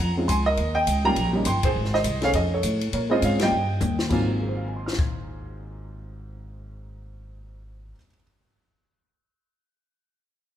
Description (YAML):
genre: jazz piano trio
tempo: 204 BPM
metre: 4/4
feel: swing 60% on 8ths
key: Ab mixolydian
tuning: A4 = 440 Hz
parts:
  - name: warm baby grand piano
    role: melody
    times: 0.0-8.2 s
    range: Ab2 to Ab6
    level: -24 LUFS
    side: right 1 dB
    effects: none
  - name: upright bass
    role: bass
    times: 0.0-7.9 s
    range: G1 to Bb2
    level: -27 LUFS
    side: equal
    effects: none
  - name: compact cocktail drum kit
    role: drums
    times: 0.3-5.1 s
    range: crash cymbal, hi-hat, kick drum, ride cymbal, snare drum, toms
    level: -29 LUFS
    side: left 2 dB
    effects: none
room: moderate large studio reverb, RT60 1.4 s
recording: band playing live in one room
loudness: -21 LUFS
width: side -10 dB against mid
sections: 0.0-4.1 A section; 4.1-6.5 B section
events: band accent 1.6, 3.4; drum fill 3.5-4.1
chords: 0.0 Bbm7; 0.6 Eb7; 1.8 Ab; 2.3 F7alt; 2.9 Bbm7; 3.5 Eb; 4.1 Ab13